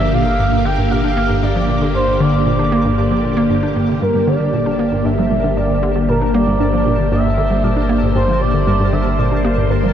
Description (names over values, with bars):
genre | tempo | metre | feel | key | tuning
ambient, sequencer-driven space music | 116 BPM | 4/4 | straight | G dorian | A4 = 440 Hz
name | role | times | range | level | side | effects
expressive portamento lead | melody | 0.0-9.9 s | Bb4 to G5 | -20 LUFS | equal | lush chorus, tape echo
phased string machine | sustained chords | 0.0-9.9 s | D3 to C5 | -19 LUFS | equal | ensemble chorus, phaser
hollow square pluck | riff | 0.0-9.9 s | G2 to D4 | -19 LUFS | equal | chorus, tape echo
warm sub bass | bass | 0.0-9.9 s | G1 | -21 LUFS | equal | none
pulsing gated texture | texture | 0.0-9.9 s | Bb4 to D6 | -30 LUFS | right 2 dB | chorus, built-in reverb
warbly dusty pluck | arpeggios | 4.0-9.9 s | G3 to Bb4 | -24 LUFS | right 3 dB | chorus, auto-pan, tape echo
room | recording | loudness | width
wet huge ambient reverb, RT60 8.1 s | dreamy mix soaked in reverb | -13 LUFS | side -9 dB against mid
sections
0.0-9.9 A section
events
none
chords
0.0 Gm